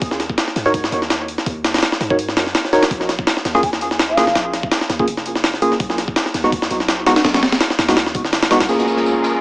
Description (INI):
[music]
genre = drum and bass, jungle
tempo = 166 BPM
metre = 4/4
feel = swing 54% on 16ths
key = Bb phrygian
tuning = A4 = 438 Hz
[part]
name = warm 808-style bass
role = bass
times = 0.0-8.7 s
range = F1 to Ab2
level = -29 LUFS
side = equal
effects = none
[part]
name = breakbeat sampler-style drum kit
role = drums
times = 0.0-8.7 s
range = hi-hat, kick drum, snare drum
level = -17 LUFS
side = equal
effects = none
[part]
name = tine electric piano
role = stabs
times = 0.7-9.4 s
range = Ab3 to Db5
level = -18 LUFS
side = equal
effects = medium stereo tremolo, low-pass filter, tape echo
[part]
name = mellow hollow concert flute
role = melody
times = 3.6-4.4 s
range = F5 to Ab5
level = -21 LUFS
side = equal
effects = tape echo
[part]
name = clear symphonic string section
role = sustained chords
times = 8.7-9.4 s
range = Db4 to Bb4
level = -21 LUFS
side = left 1 dB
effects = none
[part]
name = crunchy breakbeat drum kit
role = drums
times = 8.7-9.3 s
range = hi-hat, snare drum, tambourine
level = -28 LUFS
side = equal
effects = high-pass filter on hats, high-pass filter on snare, high-pass filter on perc, high-pass filter on room, tape echo
[part]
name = downlifter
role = sound effects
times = 8.7-9.4 s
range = none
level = -25 LUFS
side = equal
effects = none
[part]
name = wind-like tuned noise texture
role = texture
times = 9.0-9.4 s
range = Eb6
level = -31 LUFS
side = equal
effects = built-in reverb
[sound]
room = moderate plate reverb, RT60 1.9 s, studio reverb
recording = echo-heavy mix, small speaker sound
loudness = -15 LUFS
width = side -24 dB against mid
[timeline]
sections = 0.0-8.7 A section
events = none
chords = 0.0 Ebm; 2.9 Bb5; 5.8 Abm7/Cb (rootless); 8.7 Bbm7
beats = | 0.02 0.38 0.74 1.10 | 1.47 1.83 2.19 2.55 | 2.91 3.27 3.63 4.00 | 4.36 4.72 5.08 5.44 | 5.80 6.16 6.53 6.89 | 7.25 7.61 7.97 8.33 | 8.69 9.06